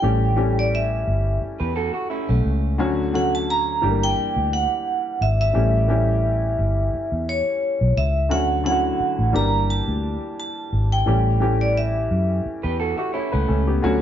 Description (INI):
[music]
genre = soul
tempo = 87 BPM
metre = 4/4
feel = swing 54% on 16ths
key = unclear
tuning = A4 = 439 Hz
[part]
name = vibraphone with hard mallets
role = melody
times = 0.0-12.4 s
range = C#5 to Bb5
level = -23 LUFS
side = right 1 dB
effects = none
[part]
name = clear concert grand piano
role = accompaniment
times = 0.0-14.0 s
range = D3 to E5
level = -25 LUFS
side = left 3 dB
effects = none
[part]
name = vintage muted fingered electric bass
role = bass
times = 0.0-14.0 s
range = G1 to F#2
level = -21 LUFS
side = equal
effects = none
[part]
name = electric guitar through a small old amp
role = riff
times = 1.6-2.8, 12.6-13.8 s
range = A3 to B4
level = -26 LUFS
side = right 3 dB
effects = tube saturation, spring reverb
[sound]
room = moderate studio reverb, RT60 0.8 s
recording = band playing live in one room, nothing above 7.6 kHz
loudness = -19 LUFS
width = side -10 dB against mid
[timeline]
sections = 0.0-14.0 A section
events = none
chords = 0.0 A7; 2.8 Dmaj7; 3.8 Gm6; 5.5 A7; 8.3 Dmaj7; 9.3 Gm6; 11.1 A7